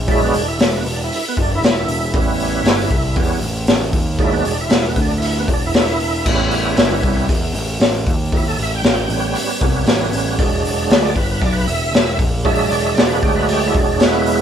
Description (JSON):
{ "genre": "blues rock power trio and southern rock", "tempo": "116 BPM", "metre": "4/4", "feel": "straight", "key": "unclear", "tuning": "A4 = 440 Hz", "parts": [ { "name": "fuzz picked electric bass", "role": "bass", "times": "0.0-14.4 s", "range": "E1 to E2", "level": "-21 LUFS", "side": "equal", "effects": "overdrive" }, { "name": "overdriven tonewheel organ", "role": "sustained chords", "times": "0.1-14.4 s", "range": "F#3 to G5", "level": "-20 LUFS", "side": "right 3 dB", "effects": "slow rotary speaker, chorus vibrato" }, { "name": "raw garage drum kit", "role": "drums", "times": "0.1-14.4 s", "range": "crash cymbal, hi-hat, kick drum, snare drum", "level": "-17 LUFS", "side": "left 1 dB", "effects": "none" } ], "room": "light reverb", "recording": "band playing live in one room", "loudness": "-14 LUFS", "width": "side -8 dB against mid", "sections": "0.0-14.4 A section", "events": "tonewheel organ solo 0.0-14.4", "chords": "0.0 E7; 2.1 A7; 4.2 E7; 6.3 A7; 10.4 E7", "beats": "| 0.08 0.60 1.11 1.63 | 2.14 2.66 3.17 3.69 | 4.20 4.72 5.23 5.75 | 6.26 6.78 7.29 7.81 | 8.32 8.84 9.35 9.87 | 10.39 10.90 11.42 11.94 | 12.45 12.97 13.49 14.00" }